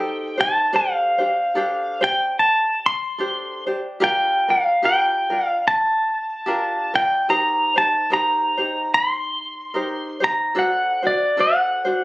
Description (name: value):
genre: hawaiian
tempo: 73 BPM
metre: 4/4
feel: swing 57% on 8ths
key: G minor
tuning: A4 = 440 Hz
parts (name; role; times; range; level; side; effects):
- pedal steel guitar; melody; 0.0-12.0 s; D5 to C6; -18 LUFS; equal; plate reverb
- tenor ukulele; accompaniment; 0.0-12.0 s; D4 to C5; -25 LUFS; equal; none
room: moderate small room reverb, RT60 0.5 s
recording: recorded on a phone in the room, studio ambience, compression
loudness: -18 LUFS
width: side -20 dB against mid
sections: 0.0-12.0 A section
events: none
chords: 0.0 Am7b5; 0.7 D7sus4; 4.0 Gm7/D; 7.3 Cm7; 10.6 D7